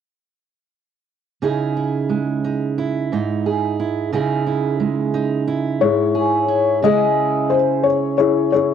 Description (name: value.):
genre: acoustic folk-pop ballad.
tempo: 89 BPM.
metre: 4/4.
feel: straight.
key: unclear.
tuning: A4 = 441 Hz.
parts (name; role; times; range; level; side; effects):
fingerpicked steel-string acoustic guitar; accompaniment; 1.4-8.7 s; Ab2 to Ab4; -19 LUFS; right 6 dB; cassette tape.
felt-muted upright piano; melody; 5.8-8.7 s; Fb4 to Eb5; -16 LUFS; left 8 dB; cassette tape.
room: moderate small room reverb, RT60 0.6 s.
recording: home recording on cassette.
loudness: -17 LUFS.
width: side -8 dB against mid.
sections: 1.4-6.8 A section; 6.8-8.7 B section.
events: none.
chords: 1.4 Dbmadd9.